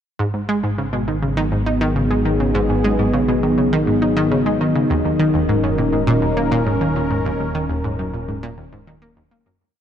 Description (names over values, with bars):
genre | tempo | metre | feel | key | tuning
ambient, sequencer-driven space music | 102 BPM | 4/4 | straight | G# minor | A4 = 440 Hz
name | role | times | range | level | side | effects
sweeping resonant pad | sustained chords | 0.2-9.6 s | F#3 to D#5 | -20 LUFS | left 1 dB | wide subtle chorus
analog pluck | riff | 0.2-9.5 s | D#2 to D#4 | -20 LUFS | equal | chorus, tape echo
fat analog bass | bass | 0.2-9.6 s | D#1 to G#1 | -26 LUFS | equal | none
room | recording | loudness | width
wet huge ambient reverb, RT60 8.2 s | dark, warm production | -16 LUFS | side -9 dB against mid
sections
0.2-9.6 A section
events
fade-out 6.5-9.6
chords
0.2 G#m7; 4.9 D#m7